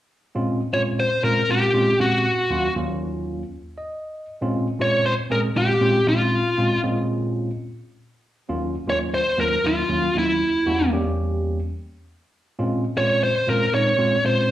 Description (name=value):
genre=blues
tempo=118 BPM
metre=4/4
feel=straight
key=unclear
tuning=A4 = 439 Hz
part: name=tine electric piano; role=accompaniment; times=0.3-14.5 s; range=Eb2 to Eb5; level=-23 LUFS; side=equal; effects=overdrive, phaser, slapback echo
part: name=smooth overdriven lead guitar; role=melody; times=0.7-14.5 s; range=E4 to Db5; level=-20 LUFS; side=equal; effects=slapback echo
room=moderate club reverb, RT60 0.8 s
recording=live gig heard through the venue's PA, club reverb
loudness=-19 LUFS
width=side -13 dB against mid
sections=0.2-14.5 A section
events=tine electric piano fill 3.5-4.3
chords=0.2 Bbm9; 2.3 Ebm9; 4.3 Bbm9; 8.4 Ebm9; 10.4 Edim7; 12.5 Bbm9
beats=| 0.21 0.72 1.23 1.74 | 2.25 2.76 3.27 3.78 | 4.29 4.80 5.31 5.82 | 6.33 6.84 7.35 7.86 | 8.37 8.88 9.39 9.90 | 10.42 10.93 11.44 11.95 | 12.46 12.97 13.48 13.99 | 14.50